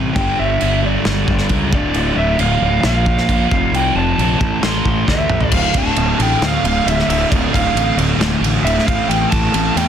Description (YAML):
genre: quiet-loud alternative rock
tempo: 134 BPM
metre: 4/4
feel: straight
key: D minor from 5.5 s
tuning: A4 = 440 Hz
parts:
  - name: thick fuzz guitar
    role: riff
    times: 0.0-9.9 s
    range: D2 to C4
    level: -19 LUFS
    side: equal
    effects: distortion
  - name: fuzz fingered electric bass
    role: bass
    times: 0.0-9.9 s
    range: D1 to E2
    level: -20 LUFS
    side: equal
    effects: overdrive
  - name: lead guitar through a small cranked amp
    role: melody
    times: 0.2-9.9 s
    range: D5 to C6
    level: -20 LUFS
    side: right 1 dB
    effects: overdrive, slapback echo
  - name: loose indie drum kit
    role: drums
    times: 0.2-9.9 s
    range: crash cymbal, kick drum, ride cymbal, snare drum, toms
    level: -19 LUFS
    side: right 1 dB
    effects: soft clipping on snare
room: small room ambience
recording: dense, heavily limited modern master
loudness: -13 LUFS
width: side -8 dB against mid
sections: 0.0-5.5 A section; 5.5-9.9 B section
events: drum fill 5.1-5.5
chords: 0.2 G5; 1.7 Dm; 2.8 Bb5; 3.5 F; 4.4 Am; 5.5 Dm; 8.9 A5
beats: | 0.15 0.60 1.05 1.50 | 1.95 2.40 2.85 3.29 | 3.74 4.19 4.64 5.08 | 5.53 5.98 6.42 6.87 | 7.32 7.76 8.21 8.65 | 9.10 9.54